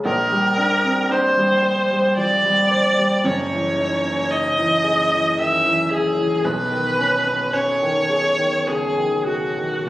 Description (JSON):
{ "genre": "classical, impressionist duo for viola and grand piano", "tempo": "56 BPM", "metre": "3/4", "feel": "rubato", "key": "unclear", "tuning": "A4 = 442 Hz", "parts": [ { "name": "rich viola", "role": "melody", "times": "0.0-9.9 s", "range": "F#4 to E5", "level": "-18 LUFS", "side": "equal", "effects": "none" }, { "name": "warm grand piano", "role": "accompaniment", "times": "0.0-9.9 s", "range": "F#1 to B#4", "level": "-22 LUFS", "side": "equal", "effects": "none" } ], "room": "wet recital hall reverb, RT60 1.5 s", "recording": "recorded on a phone in the room, studio reverb", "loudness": "-16 LUFS", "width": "side -16 dB against mid", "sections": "0.0-9.9 A section", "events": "none", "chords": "0.0 A#69; 3.2 F#sus2; 6.4 B69" }